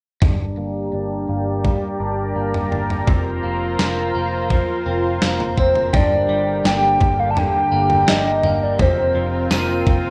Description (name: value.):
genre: dream pop.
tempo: 84 BPM.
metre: 4/4.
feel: straight.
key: G minor.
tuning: A4 = 441 Hz.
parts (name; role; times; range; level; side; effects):
lush unison pad; sustained chords; 0.2-10.1 s; D3 to Bb5; -26 LUFS; equal; chorus, low-pass filter.
clean electric guitar; arpeggios; 0.2-10.1 s; F2 to D4; -28 LUFS; equal; lush chorus, low-pass filter, tape echo.
vintage muted picked electric bass; bass; 0.2-10.1 s; F1 to G1; -28 LUFS; equal; none.
gated 80s digital drum machine; drums; 0.2-10.0 s; kick drum, snare drum, toms; -22 LUFS; equal; gated reverb, gated reverb snare.
warbly nostalgic lead; melody; 5.6-9.5 s; C5 to A5; -20 LUFS; equal; chorus, tape echo.
soft synth bell; texture; 5.9-10.1 s; G5 to Eb7; -35 LUFS; equal; chorus, phaser, tape echo.
room: light reverb, digital ambience.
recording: rough home demo mix.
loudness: -19 LUFS.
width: mono.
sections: 0.2-5.9 A section; 5.9-10.1 B section.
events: filter sweep 0.2-5.9.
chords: 0.2 Gm; 3.1 Fsus4; 5.9 Gm; 8.8 Fsus4.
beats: | 0.22 0.94 1.65 2.36 | 3.08 3.79 4.51 5.22 | 5.93 6.65 7.36 8.08 | 8.79 9.51.